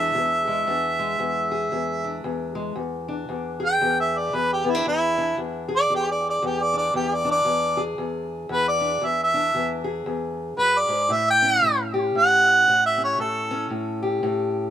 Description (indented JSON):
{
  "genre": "acoustic country blues, solo or duo",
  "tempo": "115 BPM",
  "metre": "4/4",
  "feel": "swing 60% on 8ths",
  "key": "E mixolydian",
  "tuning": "A4 = 440 Hz",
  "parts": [
    { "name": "mellow harmonica", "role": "melody", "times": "0.0-13.7 s", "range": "E4 to G5", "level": "-20 LUFS", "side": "right 1 dB", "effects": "slapback echo" },
    { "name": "fingerpicked steel-string acoustic guitar", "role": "accompaniment", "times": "0.0-14.7 s", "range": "E2 to G#4", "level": "-27 LUFS", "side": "left 3 dB", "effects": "slapback echo" }
  ],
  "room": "little or no reverb",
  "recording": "recorded outdoors, with no room sound",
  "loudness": "-20 LUFS",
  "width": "side -10 dB against mid",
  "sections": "0.0-2.8 A section; 2.8-14.7 B section",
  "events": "harmonica solo 2.8-14.7",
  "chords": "0.0 E7; 11.1 A7"
}